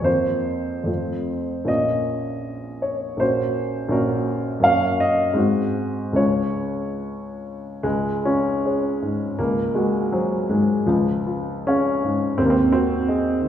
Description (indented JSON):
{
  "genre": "classical, romantic character piece for solo piano",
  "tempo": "68-89 BPM",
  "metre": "2/4",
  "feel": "rubato",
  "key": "Db major from 4.6 s",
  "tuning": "A4 = 440 Hz",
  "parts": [
    { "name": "warm upright piano", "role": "solo", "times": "0.0-13.5 s", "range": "Bb1 to F5", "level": "-20 LUFS", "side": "equal", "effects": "none" }
  ],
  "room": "wet scoring stage reverb, RT60 1.5 s",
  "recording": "heard from further back in the room",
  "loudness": "-19 LUFS",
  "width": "side -10 dB against mid",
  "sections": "0.0-7.8 A section; 7.8-13.5 B section",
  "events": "none",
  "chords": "0.1 Fsus4; 0.9 F; 1.7 Bbm; 3.2 Gb/Bb; 4.6 Gb; 5.4 Ab7; 6.2 Db; 9.4 Ab7/Db; 10.9 Db; 12.4 Ab7/Eb",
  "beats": "| 0.06 0.88 | 1.68 2.45 | 3.21 3.92 | 4.64 5.38 | 6.17 7.00 | 7.84 8.65 | 9.38 10.11 | 10.87 11.67 | 12.39 13.06"
}